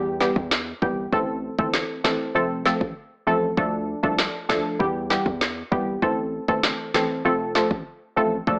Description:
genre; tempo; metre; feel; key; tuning
dancehall; 98 BPM; 4/4; straight; A minor; A4 = 438 Hz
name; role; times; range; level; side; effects
wavetable chord stab; accompaniment; 0.0-8.6 s; E3 to A4; -22 LUFS; equal; none
hard-hitting 808-style bass; bass; 0.0-8.6 s; F1 to E2; -31 LUFS; equal; none
afro-pop drum kit; drums; 0.2-8.6 s; kick drum, snare drum; -24 LUFS; equal; none
room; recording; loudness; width
light reverb; AM radio sound; -21 LUFS; side -35 dB against mid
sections
0.0-8.6 A section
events
break 0.0-1.1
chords
0.0 Em; 1.1 Am; 2.3 F; 3.6 Dm; 4.8 Em; 6.0 Am; 7.2 F

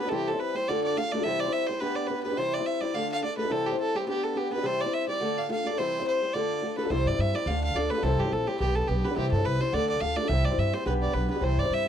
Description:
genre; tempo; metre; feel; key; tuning
celtic folk, Celtic reel; 212 BPM; 4/4; swing 55% on 8ths; unclear; A4 = 440 Hz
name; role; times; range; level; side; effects
rich fiddle; melody; 0.0-11.9 s; G4 to F5; -29 LUFS; right 2 dB; none
picked old ladder-braced acoustic guitar; accompaniment; 0.0-11.9 s; C3 to C5; -29 LUFS; left 2 dB; none
upright bass; bass; 6.9-11.8 s; Bb1 to G2; -27 LUFS; right 1 dB; none
room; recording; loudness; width
studio ambience; dry, close 1970s-style studio recording; -25 LUFS; side -9 dB against mid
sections
0.0-6.9 A section; 6.9-11.9 A section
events
none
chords
0.1 C; 0.7 Dm; 1.2 C; 1.8 G/B; 2.4 C; 2.9 Dm; 3.5 C; 4.1 G/B; 4.6 C; 5.2 Dm; 5.8 C; 6.3 Dm; 6.9 C; 7.5 Dm; 8.0 C; 8.6 G/B; 9.2 C; 9.7 Dm; 10.3 C; 10.9 G/B

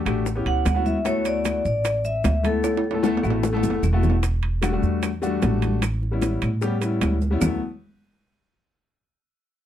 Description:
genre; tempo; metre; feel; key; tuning
Afro-Cuban jazz; 151 BPM; 4/4; straight; D major; A4 = 438 Hz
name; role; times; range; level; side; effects
clear concert grand piano; accompaniment; 0.1-7.6 s; F#3 to A4; -25 LUFS; left 4 dB; none
upright bass; bass; 0.1-7.6 s; E1 to A2; -24 LUFS; right 1 dB; none
bongos; percussion; 0.1-7.5 s; none; -30 LUFS; left 6 dB; none
claves; percussion; 0.1-7.5 s; none; -38 LUFS; left 2 dB; none
maracas; percussion; 0.1-7.5 s; none; -40 LUFS; right 10 dB; none
timbales; percussion; 0.1-7.5 s; none; -30 LUFS; right 6 dB; none
congas; percussion; 0.3-7.5 s; none; -29 LUFS; left 1 dB; none
vibraphone with medium hard mallets; melody; 0.5-3.8 s; A4 to F#5; -25 LUFS; equal; none
room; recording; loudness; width
light reverb; dark, warm production; -20 LUFS; side -11 dB against mid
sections
0.0-4.2 A section; 4.2-7.4 B section; 7.4-9.0 C section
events
drum fill 2.6-4.2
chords
0.3 A7; 1.1 D69; 4.2 Em11; 5.8 A7; 7.4 D69

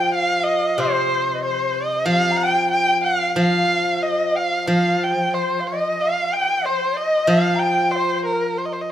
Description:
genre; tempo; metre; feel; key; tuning
chinese traditional, Chinese chamber ensemble; 93 BPM; 2/4; rubato; unclear; A4 = 442 Hz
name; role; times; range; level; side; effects
warm erhu; melody; 0.0-8.9 s; Bb4 to G5; -20 LUFS; right 1 dB; none
bright reedy large dizi; second line; 0.0-8.6 s; Bb4 to Bb5; -24 LUFS; left 3 dB; none
steel-string zither; accompaniment; 0.0-8.9 s; C3 to F3; -23 LUFS; equal; none
room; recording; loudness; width
moderate recital hall reverb, RT60 1.6 s; none; -17 LUFS; side -11 dB against mid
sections
0.0-8.9 A section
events
none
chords
none

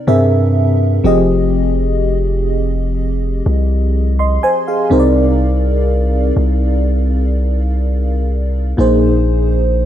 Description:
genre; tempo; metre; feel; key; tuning
contemporary R&B; 62 BPM; 4/4; straight; C minor; A4 = 439 Hz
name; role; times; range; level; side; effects
FM electric piano with soft pad layer; accompaniment; 0.0-9.9 s; Bb2 to C6; -16 LUFS; equal; chorus, tremolo
long sustained 808-style bass; bass; 0.1-9.9 s; F1 to G2; -15 LUFS; equal; none
room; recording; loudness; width
light reverb, digital ambience; none; -12 LUFS; side -11 dB against mid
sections
0.0-9.9 A section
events
none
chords
0.1 C7b13; 1.0 Fm9; 4.9 Cm9; 8.8 Bb7sus4

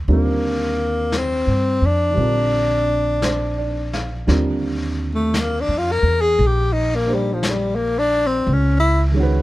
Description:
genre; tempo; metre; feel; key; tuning
jazz ballad; 57 BPM; 4/4; swing 67% on 8ths; Eb major; A4 = 441 Hz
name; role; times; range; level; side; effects
dark baby grand piano; accompaniment; 0.0-9.4 s; D3 to F5; -25 LUFS; right 2 dB; none
upright bass; bass; 0.0-9.4 s; Bb1 to G2; -20 LUFS; equal; none
breathy tenor saxophone; melody; 0.1-9.0 s; F3 to Bb4; -19 LUFS; left 2 dB; none
vintage brush drum kit; drums; 0.1-9.4 s; brushed snare drum, hi-hat, snare drum; -30 LUFS; left 2 dB; none
room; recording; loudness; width
little or no reverb; dark, warm production; -17 LUFS; side -17 dB against mid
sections
0.0-4.3 A section; 4.3-9.4 B section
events
tenor saxophone solo 4.3-9.4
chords
0.0 Ebmaj9; 2.2 Bb69; 4.3 Ebmaj9; 8.5 Dbsus2

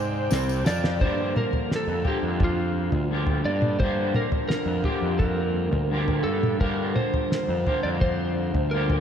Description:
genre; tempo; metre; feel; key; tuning
psychedelic rock; 86 BPM; 4/4; straight; G minor; A4 = 440 Hz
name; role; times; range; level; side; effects
electric slide guitar; melody; 0.0-9.0 s; F4 to D5; -28 LUFS; equal; analog delay
combo organ; sustained chords; 0.0-1.0 s; C3 to G5; -38 LUFS; right 3 dB; lush chorus
electric guitar at the edge of break-up; riff; 0.0-9.0 s; G2 to Ab4; -28 LUFS; equal; harmonic tremolo, double-tracked left and right
fuzz picked electric bass; bass; 0.0-9.0 s; C2 to Ab2; -28 LUFS; equal; overdrive
cloth-damped thuddy drum kit; drums; 0.3-9.0 s; kick drum, snare drum, toms; -27 LUFS; equal; none
tambourine; percussion; 0.3-0.8 s; none; -43 LUFS; left 10 dB; none
room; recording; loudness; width
moderate lush hall reverb, RT60 2.9 s; dreamy mix soaked in reverb; -22 LUFS; side -8 dB against mid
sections
0.0-1.0 A section; 1.0-9.0 B section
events
drum fill 0.3-1.0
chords
0.0 C5; 1.0 Gm7

